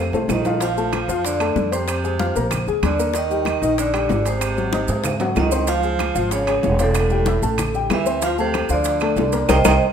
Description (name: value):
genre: Afro-Cuban jazz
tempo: 189 BPM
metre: 4/4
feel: straight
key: Bb major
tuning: A4 = 441 Hz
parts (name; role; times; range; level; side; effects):
- vibraphone with medium hard mallets; melody; 0.0-9.8 s; A4 to G5; -24 LUFS; right 2 dB; none
- warm baritone saxophone; second line; 0.0-9.7 s; A2 to F3; -27 LUFS; right 4 dB; none
- warm upright piano; accompaniment; 0.0-9.8 s; Eb3 to F6; -24 LUFS; left 5 dB; none
- upright bass; bass; 0.0-9.8 s; E1 to Ab2; -24 LUFS; equal; none
- bongos; percussion; 0.1-9.7 s; none; -30 LUFS; left 8 dB; none
- congas; percussion; 0.1-9.7 s; none; -29 LUFS; left 2 dB; none
- maracas; percussion; 0.1-9.7 s; none; -34 LUFS; right 8 dB; none
- timbales; percussion; 0.1-9.7 s; none; -29 LUFS; right 4 dB; none
- claves; percussion; 0.3-9.7 s; none; -30 LUFS; right 8 dB; none
room: moderate large studio reverb, RT60 1.2 s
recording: minimal, uncompressed stereo recording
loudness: -17 LUFS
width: side -8 dB against mid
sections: 0.6-9.9 A section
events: drum fill 0.0-0.6, 4.9-5.7; band accent 9.5-9.9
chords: 0.0 Bbmaj9; 1.9 Fm; 2.5 Bb7; 3.1 Ebmaj7; 4.4 Ab7; 5.7 Dbmaj7; 7.0 Fmaj9/E; 7.6 A5; 8.2 Dm7